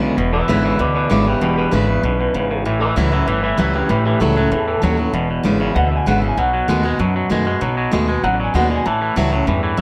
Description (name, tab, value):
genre	rockabilly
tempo	194 BPM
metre	4/4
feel	straight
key	E mixolydian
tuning	A4 = 440 Hz
part	picked steel-string acoustic guitar	accompaniment	0.0-9.8 s	E2 to F#4	-23 LUFS	equal	none
part	twangy electric guitar	riff	0.0-9.8 s	E2 to G#3	-24 LUFS	equal	none
part	upright bass	bass	0.0-9.8 s	E1 to F#2	-23 LUFS	equal	none
part	electric guitar through a small old amp	melody	0.3-9.8 s	G4 to A5	-23 LUFS	equal	tape echo
room	light reverb, studio reverb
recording	none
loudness	-17 LUFS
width	mono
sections	0.0-9.8 A section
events	none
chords	0.0 E7; 2.7 A7; 5.1 E7; 6.4 B7; 8.9 A7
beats	| 0.18 0.49 0.80 1.11 | 1.42 1.73 2.04 2.35 | 2.66 2.97 3.28 3.59 | 3.90 4.21 4.52 4.83 | 5.14 5.45 5.76 6.07 | 6.38 6.69 7.00 7.31 | 7.62 7.93 8.24 8.55 | 8.86 9.17 9.48 9.79